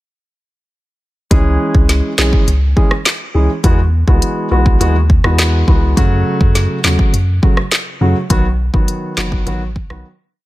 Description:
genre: dancehall.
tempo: 103 BPM.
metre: 4/4.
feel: straight.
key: C# minor.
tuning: A4 = 436 Hz.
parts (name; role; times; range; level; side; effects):
dark concert grand piano; accompaniment; 1.3-10.1 s; C#3 to G#4; -18 LUFS; equal; none.
punchy sub bass; bass; 1.3-10.0 s; F#1 to F#2; -14 LUFS; equal; none.
afro-pop drum kit; drums; 1.3-10.0 s; handclaps, hi-hat, kick drum, rim click, snare drum; -14 LUFS; equal; none.
room: little or no reverb.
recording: none.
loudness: -11 LUFS.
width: side -17 dB against mid.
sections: 1.3-10.5 verse.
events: fade-out 8.3-10.5; break 10.0-10.5.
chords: 1.3 C#m; 3.6 Eadd9; 6.0 F#m; 8.3 B.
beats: | 1.31 1.89 2.48 3.06 | 3.64 4.22 4.81 5.39 | 5.97 6.55 7.14 7.72 | 8.30 8.88 9.47 10.05.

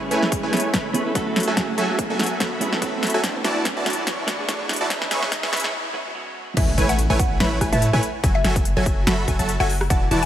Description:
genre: future bass.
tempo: 144 BPM.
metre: 4/4.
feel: swing 55% on 16ths, half-time.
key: unclear.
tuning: A4 = 438 Hz.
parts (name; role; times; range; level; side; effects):
clean electric guitar; accompaniment; 0.0-6.6 s; G#3 to A4; -29 LUFS; right 3 dB; sidechain pumping, digital delay.
supersaw stab; riff; 0.0-10.3 s; E3 to C#6; -24 LUFS; right 1 dB; sidechain pumping, digital delay.
riser and impact; sound effects; 0.0-8.2 s; none; -31 LUFS; equal; none.
big-room dance drum kit; drums; 0.1-10.3 s; crash cymbal, hi-hat, rim click, snare drum; -26 LUFS; left 1 dB; overdrive, small room ambience.
electronic kick drum; drums; 0.3-10.0 s; none; -24 LUFS; equal; overdrive, small room ambience.
mallet-like synth pluck; melody; 6.6-10.3 s; C#5 to G#5; -28 LUFS; equal; chorus, phaser, sidechain pumping, dub echo.
wide unison pluck; arpeggios; 6.6-10.3 s; G#5 to B5; -32 LUFS; right 1 dB; sidechain pumping, digital delay.
warm 808-style bass; bass; 6.6-10.3 s; E1 to A2; -23 LUFS; equal; sidechain pumping.
room: moderate huge ambient reverb, RT60 5.3 s.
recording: high-pass filter.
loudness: -19 LUFS.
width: side -11 dB against mid.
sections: 0.0-6.6 A section; 6.6-10.3 B section.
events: build-up 0.0-6.6; drum fill 0.0-5.7; riser 0.0-5.7; filter sweep on supersaw synth 0.0-6.6; filter sweep 0.0-6.6; break 5.7-6.6; drop 6.6-10.3; impact 6.6-8.2.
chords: 0.0 F#m7; 3.2 E9sus4; 4.9 C#m7; 6.6 Amaj7; 8.0 F#m7.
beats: 0.32 0.74 1.15 | 1.57 1.99 2.40 2.82 | 3.24 3.65 4.07 4.49 | 4.90 5.32 5.74 6.15 | 6.57 6.99 7.40 7.82 | 8.24 8.65 9.07 9.49 | 9.90.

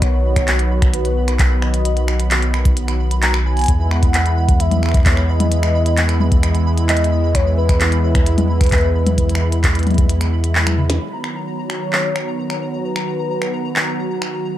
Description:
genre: IDM.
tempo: 131 BPM.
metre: 4/4.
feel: straight.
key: B major.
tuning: A4 = 440 Hz.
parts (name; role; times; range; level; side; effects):
warm velvety synth lead; melody; 0.0-14.4 s; B4 to A#5; -24 LUFS; left 1 dB; chorus, tape echo.
warm analog pad; sustained chords; 0.0-14.6 s; D#3 to F#4; -23 LUFS; right 1 dB; chorus.
rubbery square bass; bass; 0.0-11.0 s; B1 to E2; -17 LUFS; equal; none.
electronic kick drum; drums; 0.0-10.1 s; none; -17 LUFS; equal; none.
glitchy drum kit; drums; 0.0-14.3 s; finger snaps, handclaps, hi-hat, snare drum, toms; -21 LUFS; left 1 dB; none.
pulsing gated texture; texture; 0.0-14.6 s; A#5 to B5; -32 LUFS; equal; chorus, built-in reverb, sidechain pumping.
room: digital ambience.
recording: dark, warm production.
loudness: -14 LUFS.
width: side -13 dB against mid.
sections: 0.0-11.0 A section; 11.0-14.6 B section.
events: drum fill 10.7-11.0; filter sweep on analog synth pad 11.0-14.6.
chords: 0.0 B; 3.7 Emaj7; 11.0 Bmaj7.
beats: | 0.02 0.48 0.94 1.39 | 1.85 2.31 2.77 3.23 | 3.68 4.14 4.60 5.06 | 5.52 5.97 6.43 6.89 | 7.35 7.81 8.26 8.72 | 9.18 9.64 10.10 10.55 | 11.01 11.47 11.93 12.39 | 12.85 13.30 13.76 14.22.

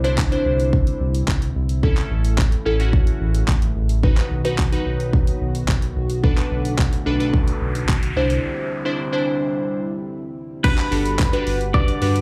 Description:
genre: dance-pop.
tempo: 109 BPM.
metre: 4/4.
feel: straight.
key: unclear.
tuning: A4 = 440 Hz.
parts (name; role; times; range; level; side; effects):
glassy digital keys; accompaniment; 0.0-12.2 s; C#4 to C5; -26 LUFS; equal; chorus, sidechain pumping, plate reverb, slapback echo.
chorused pulse-width pad; sustained chords; 0.0-12.2 s; C#3 to F#5; -32 LUFS; equal; sidechain pumping, plate reverb.
round analog bass; bass; 0.0-12.2 s; G1 to G2; -24 LUFS; equal; sidechain pumping.
pop drum kit; drums; 0.0-12.2 s; crash cymbal, handclaps, hi-hat, kick drum; -22 LUFS; equal; none.
noise sweep; sound effects; 6.9-9.5 s; none; -36 LUFS; equal; none.
twelve-string electric guitar; melody; 10.6-12.2 s; B4 to D5; -28 LUFS; equal; spring reverb, digital delay, plate reverb.
tambourine; percussion; 11.2-11.3 s; none; -42 LUFS; equal; none.
room: little or no reverb.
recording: live gig heard through the venue's PA, club reverb.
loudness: -20 LUFS.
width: mono.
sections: 0.0-10.6 A section; 10.6-12.2 B section.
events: noise sweep 6.9-10.6; break 8.4-10.6.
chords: 0.0 Cadd9; 1.8 A; 4.0 B; 6.2 Bm7; 8.2 Cadd9; 10.6 Gmaj7.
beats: 0.18 0.73 1.28 | 1.83 2.38 2.93 3.48 | 4.04 4.58 5.14 5.69 | 6.24 6.79 7.34 7.89 | 8.44 8.99 9.54 10.09 | 10.64 11.19 11.74.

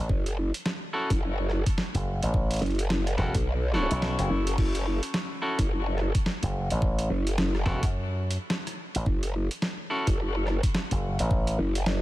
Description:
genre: glitch hop.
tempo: 107 BPM.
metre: 4/4.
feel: swing 60% on 16ths.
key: F# minor pentatonic.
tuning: A4 = 441 Hz.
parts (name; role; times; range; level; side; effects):
slap bass with an envelope filter; bass; 0.0-11.6 s; E1 to F#2; -27 LUFS; equal; none.
growl bass; bass; 0.1-12.0 s; F#1 to B1; -26 LUFS; equal; chorus, overdrive.
electronic kick drum; drums; 0.1-11.4 s; none; -27 LUFS; equal; overdrive.
boom bap sampler-style drum kit; drums; 0.3-12.0 s; crash cymbal, hi-hat, rim click, snare drum; -33 LUFS; equal; none.
clean electric guitar; stabs; 0.9-10.1 s; C#4 to A4; -35 LUFS; left 1 dB; sidechain pumping, ping-pong delay.
room: digital ambience.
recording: none.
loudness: -25 LUFS.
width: side -16 dB against mid.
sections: 0.0-12.0 A section.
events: none.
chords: 0.0 F#m7.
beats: | 0.10 0.66 1.22 1.78 | 2.34 2.90 3.46 4.02 | 4.58 5.14 5.70 6.26 | 6.82 7.38 7.95 8.51 | 9.07 9.63 10.19 10.75 | 11.31 11.87.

